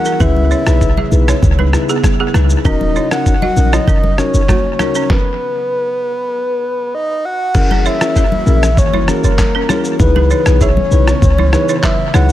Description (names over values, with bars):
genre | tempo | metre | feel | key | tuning
afrobeats | 98 BPM | 4/4 | straight | C# dorian | A4 = 438 Hz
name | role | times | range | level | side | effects
breathy flute-like synth lead | melody | 0.0-12.3 s | A#4 to F#5 | -18 LUFS | left 1 dB | chorus, tape echo
mellow tine electric piano | accompaniment | 0.0-12.3 s | C#4 to B4 | -20 LUFS | left 5 dB | tape echo
airy breathy pad | sustained chords | 0.0-12.3 s | C#3 to F#4 | -24 LUFS | equal | chorus
balafon | riff | 0.0-12.3 s | A#3 to E5 | -21 LUFS | right 7 dB | tape echo
lo-fi sampler-style drum kit | drums | 0.0-12.3 s | crash cymbal, handclaps, kick drum, rim click, shaker, snare drum | -16 LUFS | equal | tape echo
clean 808-style bass | bass | 0.2-12.3 s | D#1 to C#2 | -13 LUFS | equal | none
congas | percussion | 0.2-12.3 s | none | -23 LUFS | left 3 dB | tape echo
room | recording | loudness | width
digital ambience | echo-heavy mix | -11 LUFS | side -13 dB against mid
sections
0.0-7.5 A section; 7.5-12.3 B section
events
stop 5.1-7.5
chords
0.2 C#m7; 2.6 D#m7; 5.1 N.C.; 7.5 F#7; 10.0 C#m7